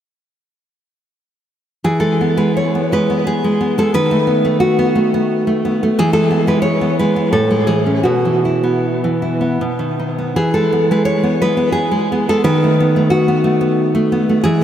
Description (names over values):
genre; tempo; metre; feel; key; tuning
romantic piece for solo classical guitar; 76-93 BPM; 3/4; rubato; E major; A4 = 440 Hz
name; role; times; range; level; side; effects
nylon-string guitar; solo; 1.8-14.6 s; A2 to C#5; -13 LUFS; equal; diffuse ambient delay
room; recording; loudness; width
wet lush hall reverb, RT60 2.7 s; dreamy mix soaked in reverb; -13 LUFS; side -10 dB against mid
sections
1.8-14.6 A section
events
none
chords
1.8 E; 4.0 B7/D#; 6.0 E; 7.3 Amaj7; 8.1 Bsus4; 9.6 B; 10.4 E; 12.5 B7/D#